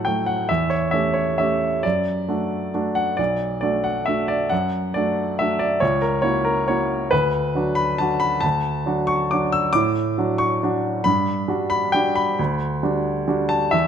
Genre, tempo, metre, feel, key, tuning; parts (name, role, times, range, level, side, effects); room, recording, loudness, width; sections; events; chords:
classical, piano waltz; 136 BPM; 3/4; uneven beats, rubato; A4 = 440 Hz
clear baby grand piano; solo; 0.0-13.9 s; B1 to E6; -19 LUFS; equal
moderate scoring stage reverb, RT60 1.5 s; close, detailed microphones; -19 LUFS; side -8 dB against mid
0.0-13.9 A section
0.5 A7/E; 1.8 D/F#; 3.2 Bm7; 5.8 F#7/C#; 7.1 Bm/D; 8.4 D; 11.1 Gmaj7